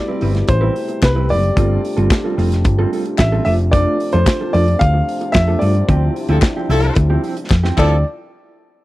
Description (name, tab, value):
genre	disco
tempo	111 BPM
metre	4/4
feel	straight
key	D dorian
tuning	A4 = 441 Hz
part	warm grand piano	melody	0.0-8.0 s	B4 to F5	-21 LUFS	equal	none
part	dark French horn section	sustained chords	0.0-8.0 s	B2 to F4	-24 LUFS	equal	none
part	mellow electric guitar	accompaniment	0.1-7.9 s	F3 to B4	-23 LUFS	right 3 dB	spring reverb
part	hollow-body short-scale fingered electric bass	bass	0.2-8.0 s	F1 to G2	-15 LUFS	equal	none
part	modern studio drum kit	drums	0.2-7.9 s	crash cymbal, hi-hat, kick drum, snare drum	-15 LUFS	equal	none
part	group handclap	percussion	1.0-8.0 s	none	-29 LUFS	left 12 dB	none
part	warm horn section	stabs	6.3-8.0 s	F3 to A4	-20 LUFS	left 4 dB	none
room	small room ambience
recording	dry, close 1970s-style studio recording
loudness	-13 LUFS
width	side -17 dB against mid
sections	0.0-8.0 A section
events	band accent 5.9-8.0; drum fill 7.5-8.0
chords	0.0 Am9; 1.6 F6; 5.9 Dm11; 8.0 N.C.